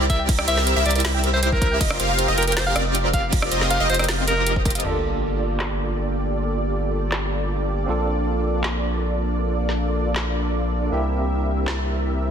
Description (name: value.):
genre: future bass.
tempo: 158 BPM.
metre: 4/4.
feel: half-time.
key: G minor.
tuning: A4 = 441 Hz.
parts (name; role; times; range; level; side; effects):
thumb-piano-like synth pluck; arpeggios; 0.0-4.8 s; E4 to G5; -33 LUFS; right 1 dB; none.
wide unison pluck; arpeggios; 0.0-4.8 s; D5 to G5; -30 LUFS; equal; sidechain pumping.
big bright polysynth; riff; 0.0-12.3 s; Bb3 to G5; -24 LUFS; right 1 dB; ensemble chorus, sidechain pumping.
saturated sub bass; bass; 0.0-12.3 s; F1 to C2; -24 LUFS; equal; sidechain pumping.
breathy alto saxophone; melody; 0.1-4.6 s; Bb4 to F5; -25 LUFS; equal; sidechain pumping, digital delay.
electronic kick drum; drums; 0.1-4.7 s; none; -22 LUFS; equal; none.
trap drum kit; drums; 0.1-11.8 s; crash cymbal, handclaps, hi-hat, rim click, snare drum; -27 LUFS; right 1 dB; low-pass filter on hats, low-pass filter on snare, low-pass filter on cymbals.
barky tine electric piano; accompaniment; 4.8-12.3 s; Bb3 to A4; -31 LUFS; right 2 dB; medium tremolo, sidechain pumping, ping-pong delay.
sub drop; sound effects; 4.8-6.4 s; none; -34 LUFS; left 1 dB; none.
room: moderate lush hall reverb, RT60 1.7 s, digital ambience.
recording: dense, heavily limited modern master.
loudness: -19 LUFS.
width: side -8 dB against mid.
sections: 0.0-4.8 A section; 4.8-12.3 B section.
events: drop 0.0-4.8; drum fill 4.7; impact 4.8-6.4.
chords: 0.0 C7; 1.8 F9sus4; 4.8 Gm9; 7.9 Bbmaj7; 10.9 C7.